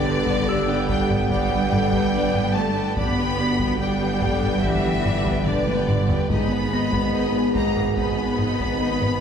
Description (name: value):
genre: cinematic, hybrid orchestral and electronic film score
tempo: 72 BPM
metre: 4/4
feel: straight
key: unclear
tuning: A4 = 440 Hz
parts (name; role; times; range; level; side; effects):
- rich symphonic violin section; melody; 0.0-9.2 s; D5 to B5; -28 LUFS; left 1 dB; none
- clear studio violin section; second line; 0.0-9.2 s; G#4 to G5; -32 LUFS; left 2 dB; none
- rich symphonic viola section; accompaniment; 0.0-9.2 s; G#3 to G4; -32 LUFS; equal; none
- clear trombone section; sustained chords; 0.0-9.2 s; G2 to B3; -30 LUFS; right 3 dB; none
- mellow French horn section; sustained chords; 0.0-9.2 s; F#4 to B4; -29 LUFS; equal; none
- mellow tuba; bass; 0.0-9.2 s; G1 to G#1; -30 LUFS; right 3 dB; none
- rich symphonic double bass section; bass; 0.0-9.2 s; G1 to G#1; -29 LUFS; right 3 dB; none
- warm symphonic cello section; bass; 0.0-9.2 s; D3 to B3; -27 LUFS; left 1 dB; none
- harp-like synth pluck; arpeggios; 0.1-9.1 s; G3 to G#4; -29 LUFS; left 2 dB; none
- solo taiko drums; drums; 0.3-9.2 s; none; -27 LUFS; equal; none
- bright grand piano; texture; 0.5-9.2 s; E6 to A#6; -39 LUFS; left 2 dB; none
room: wet scoring stage reverb, RT60 1.9 s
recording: heard from further back in the room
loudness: -19 LUFS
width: side -7 dB against mid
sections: 0.0-9.2 A section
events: drum fill 5.5-6.3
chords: 0.0 G; 6.3 G#m